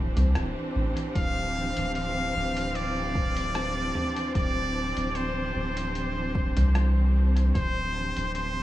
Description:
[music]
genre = ambient dub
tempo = 75 BPM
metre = 4/4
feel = swing 54% on 16ths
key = D minor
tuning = A4 = 440 Hz
[part]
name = warm symphonic string section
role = sustained chords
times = 0.0-8.6 s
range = E3 to C5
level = -32 LUFS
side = right 1 dB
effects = none
[part]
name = soft dub sub bass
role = bass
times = 0.0-8.6 s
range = D1 to C2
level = -27 LUFS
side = equal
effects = none
[part]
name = lo-fi sampler-style drum kit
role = drums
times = 0.2-8.5 s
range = hi-hat, rim click, toms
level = -38 LUFS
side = right 1 dB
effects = studio reverb, dub echo
[part]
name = trumpet with straight mute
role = melody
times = 1.2-8.6 s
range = C5 to F5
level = -31 LUFS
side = left 1 dB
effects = dub echo
[part]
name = electronic kick drum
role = drums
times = 1.2-7.7 s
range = none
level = -28 LUFS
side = equal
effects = overdrive, studio reverb
[sound]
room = little or no reverb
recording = echo-heavy mix, studio ambience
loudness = -24 LUFS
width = side -15 dB against mid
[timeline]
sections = 0.0-8.6 A section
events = none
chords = 0.0 D5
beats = 0.35 | 1.15 1.95 2.75 3.55 | 4.35 5.15 5.95 6.75 | 7.55 8.35

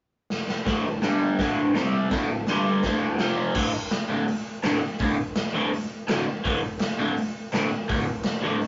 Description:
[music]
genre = garage rock duo or trio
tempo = 166 BPM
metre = 4/4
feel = straight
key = unclear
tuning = A4 = 440 Hz
[part]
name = raw garage drum kit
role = drums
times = 0.3-8.7 s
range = crash cymbal, hi-hat, kick drum, snare drum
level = -30 LUFS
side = equal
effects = none
[part]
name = crunchy overdriven guitar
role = riff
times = 0.7-8.6 s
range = D2 to C4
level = -26 LUFS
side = equal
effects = phaser
[part]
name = group handclap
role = percussion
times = 3.9-8.3 s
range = none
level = -42 LUFS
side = equal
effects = none
[sound]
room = moderate studio ambience, RT60 0.5 s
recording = rough rehearsal-room recording, warm saturation, nothing above 7.6 kHz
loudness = -25 LUFS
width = mono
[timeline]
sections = 0.7-3.6 A section; 3.6-8.7 B section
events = drum fill 0.3-0.7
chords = 0.0 N.C.; 0.7 D5; 1.0 G5; 1.4 D5; 1.7 C5; 2.1 D5; 2.5 G5; 2.8 D5; 3.2 F5; 3.6 D5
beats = 0.30 | 0.66 1.02 1.38 1.74 | 2.11 2.47 2.83 3.19 | 3.55 3.92 4.28 4.64 | 5.00 5.36 5.72 6.08 | 6.44 6.80 7.16 7.53 | 7.89 8.25 8.61

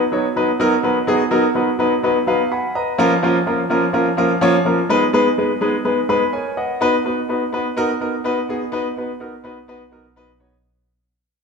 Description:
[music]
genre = soul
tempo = 126 BPM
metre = 4/4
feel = straight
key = unclear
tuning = A4 = 440 Hz
[part]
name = warm concert grand piano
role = solo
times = 0.1-10.5 s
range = E#3 to B5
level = -16 LUFS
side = equal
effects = none
[sound]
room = wet large studio reverb, RT60 1.4 s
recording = band playing live in one room, faint mains hum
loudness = -16 LUFS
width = side -5 dB against mid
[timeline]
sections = 0.0-6.8 A section; 6.8-10.6 B section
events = grand piano fill 2.0-3.0, 5.9-6.8; fade-out 6.8-10.6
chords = 0.0 B; 3.0 A#m; 4.9 G#m; 6.8 B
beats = 0.13 0.60 | 1.08 1.56 2.04 2.51 | 2.99 3.47 3.94 4.42 | 4.90 5.38 5.86 6.33 | 6.81 7.29 7.77 8.25 | 8.73 9.21 9.69 10.16

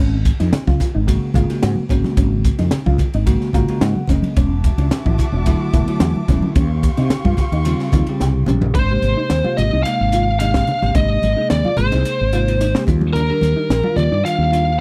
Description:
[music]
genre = electric jazz fusion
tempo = 109 BPM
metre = 4/4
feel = straight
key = Ab lydian from 8.8 s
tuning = A4 = 441 Hz
[part]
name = mellow electric guitar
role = stabs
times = 0.0-14.7 s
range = Db4 to G4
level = -29 LUFS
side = equal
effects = ensemble chorus
[part]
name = mellow fretless electric bass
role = bass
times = 0.0-14.8 s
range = E1 to C3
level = -20 LUFS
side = equal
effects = none
[part]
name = crisp fusion drum kit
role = drums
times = 0.2-14.7 s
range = hi-hat, kick drum, ride cymbal, snare drum, toms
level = -22 LUFS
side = equal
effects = none
[part]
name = congas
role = percussion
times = 0.5-14.1 s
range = none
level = -27 LUFS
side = equal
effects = none
[part]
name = bell-like tine electric piano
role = accompaniment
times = 1.1-14.7 s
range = C3 to Bb5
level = -25 LUFS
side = equal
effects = analog chorus
[part]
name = warm chamber string section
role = sustained chords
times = 4.4-8.7 s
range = F#4 to D6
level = -32 LUFS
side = equal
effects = none
[part]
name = bluesy overdriven lead guitar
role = melody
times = 8.7-14.8 s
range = Bb4 to F5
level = -22 LUFS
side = equal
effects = distortion
[sound]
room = little or no reverb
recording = none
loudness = -17 LUFS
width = mono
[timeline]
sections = 0.0-8.8 A section; 8.8-14.8 B section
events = tine electric piano fill 3.3-4.4; drum fill 8.2-8.8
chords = 0.0 Ab9sus4; 4.4 E9sus4; 6.6 Eb13; 8.8 Abmaj9; 12.9 Ebmaj9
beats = 0.53 1.08 1.63 | 2.18 2.73 3.27 3.82 | 4.37 4.92 5.46 6.01 | 6.56 7.11 7.66 8.20 | 8.75 9.30 9.85 10.40 | 10.95 11.50 12.05 12.60 | 13.15 13.70 14.25 14.80

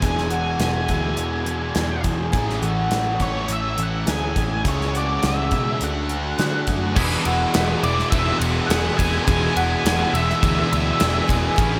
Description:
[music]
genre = rock, shoegaze and dream pop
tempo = 104 BPM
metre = 4/4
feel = straight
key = E mixolydian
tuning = A4 = 440 Hz
[part]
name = octave-fuzz lead guitar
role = melody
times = 0.0-11.3 s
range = C#5 to G#5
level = -29 LUFS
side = equal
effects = distortion, delay
[part]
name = fingerpicked twelve-string acoustic guitar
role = arpeggios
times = 0.0-11.8 s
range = F#4 to G#4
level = -31 LUFS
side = equal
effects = lush chorus, delay
[part]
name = crunchy overdriven guitar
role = riff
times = 0.0-11.8 s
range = E2 to F#4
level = -30 LUFS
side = equal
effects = reverse reverb
[part]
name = thick fuzz guitar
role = riff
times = 0.0-11.8 s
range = E2 to D4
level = -30 LUFS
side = equal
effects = distortion, analog chorus
[part]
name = vintage muted picked electric bass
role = bass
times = 0.0-11.8 s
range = E1 to D3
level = -28 LUFS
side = equal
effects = none
[part]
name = gated 80s drum kit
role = drums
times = 0.0-11.7 s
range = crash cymbal, hi-hat, kick drum, ride cymbal, snare drum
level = -26 LUFS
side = equal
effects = none
[part]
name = tight distorted guitar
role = riff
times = 7.0-11.8 s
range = A2 to E4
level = -29 LUFS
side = equal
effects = distortion
[sound]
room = wet plate reverb, RT60 3.1 s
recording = dreamy mix soaked in reverb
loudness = -21 LUFS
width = mono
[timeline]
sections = 0.0-7.0 A section; 7.0-11.8 B section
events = none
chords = 0.0 E7; 2.3 Amaj7; 4.7 C#m; 5.8 D; 7.0 E7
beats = | 0.02 0.60 1.18 1.76 | 2.34 2.92 3.50 4.08 | 4.66 5.24 5.82 6.39 | 6.97 7.55 8.12 8.70 | 9.27 9.85 10.42 11.00 | 11.57

